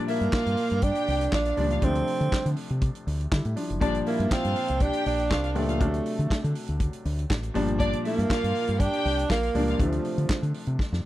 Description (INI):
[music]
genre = disco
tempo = 120 BPM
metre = 4/4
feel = straight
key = G dorian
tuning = A4 = 440 Hz
[part]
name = warm concert grand piano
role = accompaniment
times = 0.0-11.1 s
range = Bb2 to Bb4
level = -31 LUFS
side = left 2 dB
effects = none
[part]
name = breathy tenor saxophone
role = melody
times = 0.1-10.5 s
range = F3 to D4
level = -28 LUFS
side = right 3 dB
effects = none
[part]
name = dark studio violin section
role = second line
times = 0.1-9.8 s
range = D4 to G5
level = -32 LUFS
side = left 3 dB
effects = none
[part]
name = vintage drum kit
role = drums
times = 0.1-11.0 s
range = handclaps, hi-hat, kick drum, snare drum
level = -29 LUFS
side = equal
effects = none
[part]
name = deep dub fingered electric bass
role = bass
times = 0.2-11.0 s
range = F#1 to D3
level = -27 LUFS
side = equal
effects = none
[sound]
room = small room ambience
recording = dry, close 1970s-style studio recording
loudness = -23 LUFS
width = side -14 dB against mid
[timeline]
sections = 0.0-11.1 A section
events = drum fill 10.8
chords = 0.0 Gm7; 1.8 Dm7; 3.8 Gm7; 5.8 D7; 7.5 Gm7; 9.8 Dm7